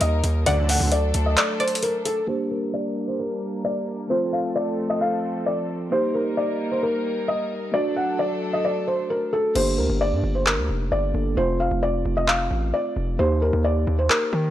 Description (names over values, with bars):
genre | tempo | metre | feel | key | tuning
hip hop, trap | 132 BPM | 4/4 | half-time | G minor | A4 = 440 Hz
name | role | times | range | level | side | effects
felt-muted upright piano | melody | 0.0-14.5 s | A4 to F#5 | -24 LUFS | left 1 dB | low-pass filter
rich symphonic string section | sustained chords | 0.0-9.5 s | F3 to Bb4 | -30 LUFS | left 1 dB | low-pass filter
hard-hitting 808-style bass | bass | 0.0-1.4, 9.6-14.5 s | F1 to Eb3 | -23 LUFS | equal | none
trap drum kit | drums | 0.0-2.2, 9.6-14.2 s | crash cymbal, handclaps, hi-hat | -24 LUFS | equal | none
string-like resonator pluck | second line | 0.5-1.8 s | D5 to F#5 | -30 LUFS | left 1 dB | chorus, analog delay
big bright polysynth | stabs | 0.5-0.9 s | A1 to D3 | -29 LUFS | right 3 dB | chorus
mellow tine electric piano | accompaniment | 2.3-14.5 s | A3 to A4 | -28 LUFS | right 1 dB | medium stereo tremolo, low-pass filter
room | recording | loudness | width
light reverb, digital ambience | dry, gritty hardware recording, transformer saturation | -20 LUFS | side -12 dB against mid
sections
0.0-2.3 A section; 2.3-9.6 B section; 9.6-14.5 C section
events
break 1.4-2.3; filter sweep 2.3-9.6; hi-hats muted 9.6-14.5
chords
0.5 D; 2.3 Gm; 4.1 F; 5.9 Eb; 7.7 D; 9.6 Gm; 11.4 F; 13.2 Eb